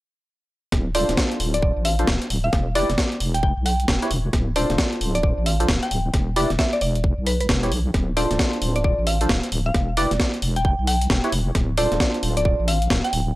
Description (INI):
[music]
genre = UK garage, two-step garage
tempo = 133 BPM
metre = 4/4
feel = swing 62% on 16ths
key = D dorian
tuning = A4 = 440 Hz
[part]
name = deep soft wobble bass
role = bass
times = 0.7-13.3 s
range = D1 to B1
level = -23 LUFS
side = equal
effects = chorus
[part]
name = breakbeat sampler-style drum kit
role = drums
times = 0.7-13.2 s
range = hi-hat, snare drum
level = -24 LUFS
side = equal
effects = none
[part]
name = electronic kick drum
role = drums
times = 0.7-13.0 s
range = none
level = -22 LUFS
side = equal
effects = none
[part]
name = mallet-like synth pluck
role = melody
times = 0.9-13.2 s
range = B4 to G5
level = -26 LUFS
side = equal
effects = chorus, tape echo
[part]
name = percussive organ stab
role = stabs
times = 0.9-12.8 s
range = D4 to D5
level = -26 LUFS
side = equal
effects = analog chorus
[sound]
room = digital ambience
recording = dry, gritty hardware recording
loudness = -19 LUFS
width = side -17 dB against mid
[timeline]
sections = 0.7-13.4 A section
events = none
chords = 0.7 Dm7; 2.5 Em7; 4.3 Dm7; 6.1 Em7; 7.9 Dm7; 9.7 Em7; 11.6 Dm7